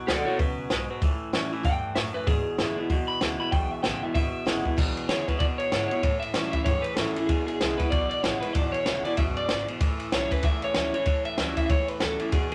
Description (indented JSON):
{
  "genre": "rockabilly",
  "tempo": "191 BPM",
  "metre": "4/4",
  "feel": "swing 60% on 8ths",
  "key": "E mixolydian",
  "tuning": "A4 = 440 Hz",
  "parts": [
    { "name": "picked steel-string acoustic guitar", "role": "accompaniment", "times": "0.0-12.5 s", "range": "E2 to F#4", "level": "-34 LUFS", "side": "equal", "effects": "none" },
    { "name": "twangy electric guitar", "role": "riff", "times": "0.0-12.5 s", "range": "E2 to G#3", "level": "-37 LUFS", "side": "equal", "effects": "none" },
    { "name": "electric guitar through a small old amp", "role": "melody", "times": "0.1-12.5 s", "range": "G#4 to B5", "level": "-32 LUFS", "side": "equal", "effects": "vibrato effect" },
    { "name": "upright bass", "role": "bass", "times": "0.1-12.5 s", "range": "E1 to B2", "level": "-39 LUFS", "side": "equal", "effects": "none" },
    { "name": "compact cocktail drum kit", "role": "drums", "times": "0.1-12.5 s", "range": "crash cymbal, hi-hat, kick drum, ride cymbal, snare drum", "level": "-29 LUFS", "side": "equal", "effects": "none" }
  ],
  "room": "moderate small room reverb, RT60 0.5 s",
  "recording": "none",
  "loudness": "-26 LUFS",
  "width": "mono",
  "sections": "0.0-4.8 A section; 4.8-12.5 B section",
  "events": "clean electric guitar solo 0.0-4.8",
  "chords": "0.0 B7; 1.0 A7; 2.3 E7; 6.0 A7; 7.3 E7; 9.8 A7"
}